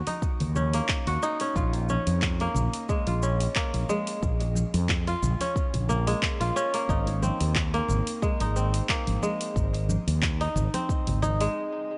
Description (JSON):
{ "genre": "organic downtempo", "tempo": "90 BPM", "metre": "4/4", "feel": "swing 55% on 16ths", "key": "Bb minor", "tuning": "A4 = 437 Hz", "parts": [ { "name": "kora", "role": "arpeggios", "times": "0.0-12.0 s", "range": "Ab3 to Gb4", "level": "-32 LUFS", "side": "equal", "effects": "tape echo, shimmer reverb" }, { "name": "deep house drum kit", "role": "drums", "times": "0.1-11.5 s", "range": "handclaps, hi-hat, shaker", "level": "-35 LUFS", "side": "equal", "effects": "studio reverb" }, { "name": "congas and bongos", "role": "percussion", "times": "0.1-11.4 s", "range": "none", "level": "-37 LUFS", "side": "equal", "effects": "none" }, { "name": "electronic kick drum", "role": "drums", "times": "0.2-11.0 s", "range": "none", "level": "-31 LUFS", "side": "equal", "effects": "studio reverb" }, { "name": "fretless electric bass", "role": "bass", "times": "0.4-11.5 s", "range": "Ab1 to F2", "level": "-29 LUFS", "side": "equal", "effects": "sidechain pumping" } ], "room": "light reverb, digital ambience", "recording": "nothing above 10.4 kHz", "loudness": "-27 LUFS", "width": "mono", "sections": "0.0-12.0 A section", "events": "stop 11.6-12.0", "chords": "0.0 Ebm7; 1.6 Bbm7; 6.9 Abadd9", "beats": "0.23 0.89 | 1.56 2.23 2.89 3.56 | 4.23 4.89 5.56 6.23 | 6.89 7.56 8.23 8.89 | 9.56 10.23 10.89 11.56" }